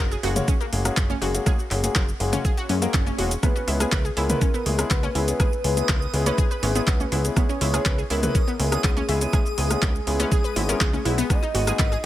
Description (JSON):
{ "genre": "progressive house", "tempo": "122 BPM", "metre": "4/4", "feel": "straight", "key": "C# dorian", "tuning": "A4 = 441 Hz", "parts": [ { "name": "analog pluck", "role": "arpeggios", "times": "0.0-11.9 s", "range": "A#3 to B4", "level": "-30 LUFS", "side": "equal", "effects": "chorus, sidechain pumping, tape echo" }, { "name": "warm grand piano", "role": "stabs", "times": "0.0-11.9 s", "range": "G#3 to C#5", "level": "-28 LUFS", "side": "left 3 dB", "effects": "sidechain pumping, tape echo" }, { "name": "plucky analog bass", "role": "bass", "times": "0.0-12.0 s", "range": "E1 to F#2", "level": "-26 LUFS", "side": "equal", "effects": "sidechain pumping" }, { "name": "deep house drum kit", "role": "drums", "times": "0.1-12.0 s", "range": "handclaps, hi-hat, shaker", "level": "-28 LUFS", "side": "equal", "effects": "none" }, { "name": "punchy analog drum machine", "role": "percussion", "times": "0.4-11.8 s", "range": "congas, rim click, toms", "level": "-30 LUFS", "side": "left 1 dB", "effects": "overdrive, sidechain pumping on toms, sidechain pumping on perc, sidechain pumping on snare" }, { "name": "electronic kick drum", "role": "drums", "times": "0.5-11.9 s", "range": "none", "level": "-22 LUFS", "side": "equal", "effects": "overdrive" }, { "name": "swell", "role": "sound effects", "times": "2.6-3.4 s", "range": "none", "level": "-37 LUFS", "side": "right 4 dB", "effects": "none" }, { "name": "soft octave-layered synth lead", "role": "melody", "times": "3.4-12.1 s", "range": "G#4 to D#5", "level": "-30 LUFS", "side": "equal", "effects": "chorus, phaser, tape echo" }, { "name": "backwards swelling texture", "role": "texture", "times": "4.6-12.1 s", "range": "D#6", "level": "-37 LUFS", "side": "right 4 dB", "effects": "built-in reverb, sidechain pumping" } ], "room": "little or no reverb", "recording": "none", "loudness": "-20 LUFS", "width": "side -14 dB against mid", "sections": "0.0-12.1 A section", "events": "swell 2.6-3.4", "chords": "0.0 F#add9; 3.4 C#m7; 11.3 G#m7" }